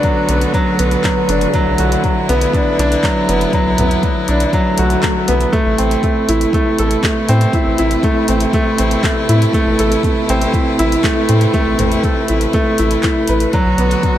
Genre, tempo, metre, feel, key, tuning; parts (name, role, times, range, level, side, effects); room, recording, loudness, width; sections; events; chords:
piano and strings electronica; 120 BPM; 4/4; straight; A dorian; A4 = 439 Hz
rich string quartet; sustained chords; 0.0-14.2 s; C3 to B4; -21 LUFS; equal; sidechain pumping
clear baby grand piano; riff; 0.0-14.2 s; F#3 to B4; -15 LUFS; equal; ping-pong delay
deep house drum kit; drums; 0.0-14.1 s; handclaps, hi-hat, toms; -24 LUFS; left 1 dB
electronic kick drum; drums; 0.0-14.1 s; -18 LUFS; equal
round analog bass; bass; 0.3-13.9 s; F#1 to A2; -17 LUFS; equal; sidechain pumping
swell; sound effects; 4.7-5.5 s; -26 LUFS; equal
light reverb; -12 LUFS; side -12 dB against mid
0.0-14.2 A section
swell 4.7-5.5
0.0 Bm7; 5.5 Amadd9; 13.5 Bm7